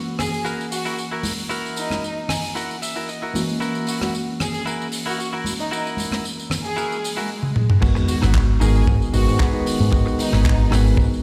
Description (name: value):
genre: nu-disco, nu disco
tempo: 114 BPM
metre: 4/4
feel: swing 53% on 16ths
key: G# minor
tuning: A4 = 440 Hz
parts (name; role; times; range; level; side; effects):
- tine electric piano; accompaniment; 0.0-11.2 s; D#3 to F#4; -28 LUFS; equal; sidechain pumping
- tube shaker and congas; percussion; 0.1-7.3 s; none; -34 LUFS; equal; none
- warm symphonic violin section; melody; 0.2-10.7 s; D#4 to G#4; -32 LUFS; equal; analog delay
- tight funk drum kit; drums; 0.2-11.2 s; crash cymbal, handclaps, hi-hat, rim click, tambourine, toms; -29 LUFS; equal; none
- direct-recorded clean electric guitar; riff; 0.4-11.1 s; D#4 to G#5; -32 LUFS; equal; subtle chorus, tape echo
- swell and sub drop; sound effects; 7.0-9.9 s; none; -29 LUFS; equal; none
- picked electric bass with an envelope filter; bass; 7.8-11.1 s; G#1 to G#2; -20 LUFS; equal; none
- kick drum; drums; 7.8-11.1 s; none; -22 LUFS; equal; none
room: light reverb, small room ambience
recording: played on a big sound system in a bare room, stone room reverb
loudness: -21 LUFS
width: mono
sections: 0.0-7.8 A section; 7.8-11.2 B section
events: clean electric guitar fill 2.0-3.6; swell 7.0-7.8; drum fill 7.4-7.8; drop 7.8-11.2; impact 7.8-9.9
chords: 0.0 F#7; 7.8 G#m7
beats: 0.45 0.98 | 1.51 2.03 2.56 3.08 | 3.61 4.14 4.66 5.19 | 5.72 6.24 6.77 7.30 | 7.82 8.35 8.88 9.40 | 9.93 10.45 10.98